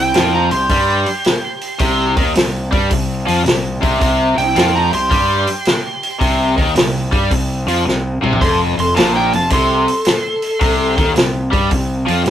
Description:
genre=blues rock power trio and southern rock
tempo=109 BPM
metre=4/4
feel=swing 67% on 8ths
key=unclear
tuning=A4 = 440 Hz
part: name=overdriven slide guitar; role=melody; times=0.0-11.1 s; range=G5 to C6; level=-19 LUFS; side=right 2 dB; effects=none
part: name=lead guitar through a small cranked amp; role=second line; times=0.0-11.1 s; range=Eb4 to A4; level=-23 LUFS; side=equal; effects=overdrive
part: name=cranked stack guitar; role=riff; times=0.0-12.3 s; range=F2 to G3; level=-18 LUFS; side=left 1 dB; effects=overdrive
part: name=fuzz fingered electric bass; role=bass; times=0.0-12.3 s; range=F1 to G2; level=-20 LUFS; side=equal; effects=overdrive
part: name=vintage drum kit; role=drums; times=0.1-12.3 s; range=hi-hat, kick drum, snare drum, toms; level=-18 LUFS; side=equal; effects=none
room=moderate studio reverb, RT60 0.5 s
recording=rough rehearsal-room recording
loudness=-13 LUFS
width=side -10 dB against mid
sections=0.0-12.3 A section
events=drum fill 7.9-8.4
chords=0.0 C5; 8.4 F; 10.6 C5

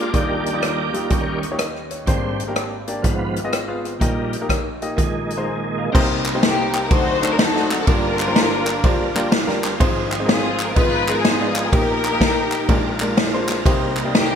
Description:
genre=uptempo gospel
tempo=124 BPM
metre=4/4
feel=swing 66% on 8ths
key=Eb major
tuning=A4 = 440 Hz
part: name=clear concert grand piano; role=accompaniment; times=0.0-14.4 s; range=G1 to Bb5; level=-24 LUFS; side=left 1 dB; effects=none
part: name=bright tonewheel organ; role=sustained chords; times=0.0-14.4 s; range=Ab2 to G5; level=-26 LUFS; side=right 2 dB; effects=slow rotary speaker, overdrive, chorus vibrato
part: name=swinging big-band drum kit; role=drums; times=0.1-14.3 s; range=crash cymbal, hi-hat, kick drum, ride cymbal, rim click, snare drum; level=-20 LUFS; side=equal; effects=none
part: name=group handclap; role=percussion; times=6.3-14.0 s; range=none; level=-29 LUFS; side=left 2 dB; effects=none
part: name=rich studio string section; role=melody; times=6.4-14.4 s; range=Bb3 to C5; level=-22 LUFS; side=left 2 dB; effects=none
room=moderate plate reverb, RT60 2.1 s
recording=bright 1980s-style digital production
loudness=-17 LUFS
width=side -8 dB against mid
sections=0.0-5.9 A section; 5.9-14.4 B section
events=tonewheel organ solo 0.0-5.9; grand piano fill 5.2-5.9; tonewheel organ fill 8.8-9.8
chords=0.1 Ebmaj9; 1.1 Eb7; 2.1 Abmaj9#11; 3.0 Abm6; 4.0 Eb/Bb; 5.0 Bb9sus4; 5.9 Cm7; 6.9 D7b9; 7.9 Gm7; 9.8 Ab6; 10.8 Abm6; 11.7 Eb/Bb; 12.7 Bb7; 13.7 Cm7

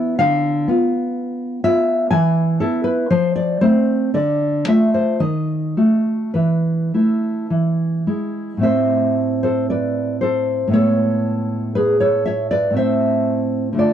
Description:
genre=romantic piece for solo classical guitar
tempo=51-63 BPM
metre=2/4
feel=rubato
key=A minor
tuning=A4 = 441 Hz
part: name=nylon-string guitar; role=solo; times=0.0-13.9 s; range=A2 to G#5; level=-16 LUFS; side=equal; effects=none
room=small room ambience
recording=dry, close 1970s-style studio recording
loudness=-16 LUFS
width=side -9 dB against mid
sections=0.0-8.6 A section; 8.6-13.9 B section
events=none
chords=0.2 Bdim/D; 2.1 E; 3.1 F; 4.1 Dm; 5.2 D#dim; 6.3 Esus4; 7.5 E; 8.6 Am; 10.7 Amaj9; 12.8 Am

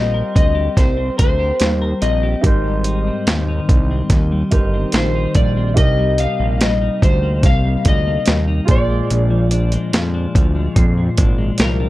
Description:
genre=indie pop, bedroom pop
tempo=72 BPM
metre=4/4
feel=straight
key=Eb major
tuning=A4 = 436 Hz
part: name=electric slide guitar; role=melody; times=0.0-11.9 s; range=Bb4 to F5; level=-23 LUFS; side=left 2 dB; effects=wide subtle chorus, tape echo
part: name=semi-hollow electric guitar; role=accompaniment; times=0.0-11.9 s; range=Ab2 to Bb4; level=-22 LUFS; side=left 2 dB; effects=analog chorus, warbly pitch drift
part: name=warm upright piano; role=accompaniment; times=0.0-11.9 s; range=Eb4 to Eb5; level=-28 LUFS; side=right 4 dB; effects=cassette tape
part: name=fat analog bass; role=bass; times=0.0-11.9 s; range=G1 to F2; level=-18 LUFS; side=equal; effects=none
part: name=dusty soul sampler-style drum kit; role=drums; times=0.4-11.8 s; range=hi-hat, kick drum, snare drum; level=-15 LUFS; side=equal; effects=overdrive
room=little or no reverb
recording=dark, warm production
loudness=-14 LUFS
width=side -17 dB against mid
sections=0.0-11.9 A section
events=none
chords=0.0 Eb6; 2.4 Abmaj7; 5.8 Cm7; 8.7 Bb7

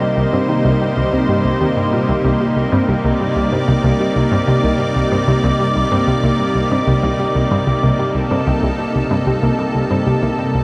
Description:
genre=ambient, sequencer-driven space music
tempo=94 BPM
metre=4/4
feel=straight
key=C dorian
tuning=A4 = 438 Hz
part: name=lush unison pad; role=sustained chords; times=0.0-10.6 s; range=C3 to D5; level=-19 LUFS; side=equal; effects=chorus
part: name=soft round pluck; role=arpeggios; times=0.0-10.5 s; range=Bb3 to G4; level=-25 LUFS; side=equal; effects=chorus, analog delay
part: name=analog pluck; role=riff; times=0.2-10.6 s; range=C2 to Eb3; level=-20 LUFS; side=equal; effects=chorus, analog delay
room=wet cathedral reverb, RT60 5.8 s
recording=dreamy mix soaked in reverb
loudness=-16 LUFS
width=mono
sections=0.0-10.6 A section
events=none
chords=0.0 Cm7

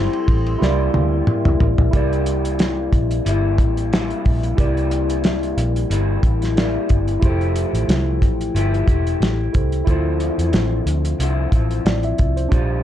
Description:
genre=indie pop, bedroom pop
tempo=91 BPM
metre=4/4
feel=swing 55% on 16ths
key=unclear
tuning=A4 = 440 Hz
part: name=electric guitar through a small old amp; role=accompaniment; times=0.0-12.8 s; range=Bb2 to G4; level=-23 LUFS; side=left 7 dB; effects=wide subtle chorus, warbly pitch drift, plate reverb
part: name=tine electric piano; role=accompaniment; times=0.0-12.8 s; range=D4 to E5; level=-26 LUFS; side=right 8 dB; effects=overdrive, cassette tape, plate reverb
part: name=warbly tape-like pad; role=sustained chords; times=0.0-1.9 s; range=A4 to C6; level=-32 LUFS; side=right 2 dB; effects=chorus, built-in reverb, plate reverb
part: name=vintage muted fingered electric bass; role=bass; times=0.0-12.8 s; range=E1 to E2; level=-20 LUFS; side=equal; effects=none
part: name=cloth-damped thuddy drum kit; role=drums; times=0.1-12.7 s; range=hi-hat, kick drum, ride cymbal, snare drum, toms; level=-19 LUFS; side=equal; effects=none
room=light reverb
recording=dark, warm production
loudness=-16 LUFS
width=side -11 dB against mid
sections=0.0-1.9 A section; 1.9-7.2 B section; 7.2-12.8 C section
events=drum fill 0.6-1.9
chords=0.0 Am7; 0.6 C7; 7.2 Fmaj9; 9.9 Dm9

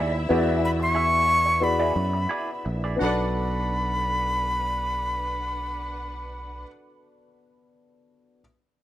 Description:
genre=soul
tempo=83-94 BPM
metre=4/4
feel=swing 54% on 16ths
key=B dorian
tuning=A4 = 440 Hz
part: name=clear studio string section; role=second line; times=0.0-6.6 s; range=D4 to F#5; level=-36 LUFS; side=equal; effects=none
part: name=dark concert grand piano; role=accompaniment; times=0.0-8.4 s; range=B3 to D5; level=-29 LUFS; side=left 3 dB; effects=none
part: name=electric guitar through a small old amp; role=riff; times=0.0-6.7 s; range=E4 to E5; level=-31 LUFS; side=right 3 dB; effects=wah
part: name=fingered electric bass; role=bass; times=0.0-6.6 s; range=A#1 to F#2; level=-28 LUFS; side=right 1 dB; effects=none
part: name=breathy bright jazz flute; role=melody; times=0.7-6.6 s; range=B5 to C#6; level=-25 LUFS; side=equal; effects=none
room=light reverb, small room ambience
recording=rough home demo mix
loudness=-22 LUFS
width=side -13 dB against mid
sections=0.0-3.0 A section; 3.0-5.9 B section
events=slowing down 0.0-3.0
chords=0.0 E7; 3.0 Bm7

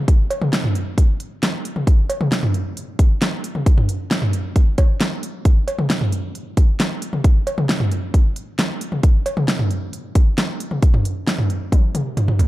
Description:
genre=pop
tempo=134 BPM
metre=4/4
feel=straight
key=none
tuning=none
part: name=pop drum kit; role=drums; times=0.1-12.5 s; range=cowbell, hi-hat, kick drum, snare drum, toms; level=-16 LUFS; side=equal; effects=none
room=light reverb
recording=dark, warm production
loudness=-17 LUFS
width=side -17 dB against mid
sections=0.0-12.5 A section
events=drum fill 11.7-12.5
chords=none

